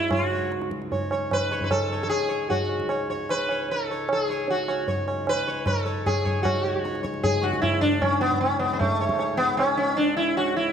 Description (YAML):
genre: indian classical, Hindustani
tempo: 152 BPM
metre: 4/4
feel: straight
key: C# raga bhairavi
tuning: A4 = 437 Hz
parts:
  - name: sitar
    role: melody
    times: 0.0-10.7 s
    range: A3 to C#5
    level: -24 LUFS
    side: equal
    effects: none
  - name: hand-pumped harmonium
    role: drone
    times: 0.0-10.7 s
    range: C#2 to G#2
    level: -34 LUFS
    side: left 2 dB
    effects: none
  - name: tabla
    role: percussion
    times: 0.1-10.5 s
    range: none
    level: -27 LUFS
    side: right 2 dB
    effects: none
room: moderate concert hall reverb, RT60 2.4 s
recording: none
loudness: -22 LUFS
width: side -8 dB against mid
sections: 0.0-6.5 A section; 6.5-10.7 B section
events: none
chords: none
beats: | 0.12 0.51 0.91 1.31 | 1.71 2.10 2.50 2.90 | 3.29 3.69 4.08 4.48 | 4.87 5.27 5.66 6.06 | 6.45 6.84 7.24 7.63 | 8.02 8.42 8.81 9.20 | 9.59 9.98 10.38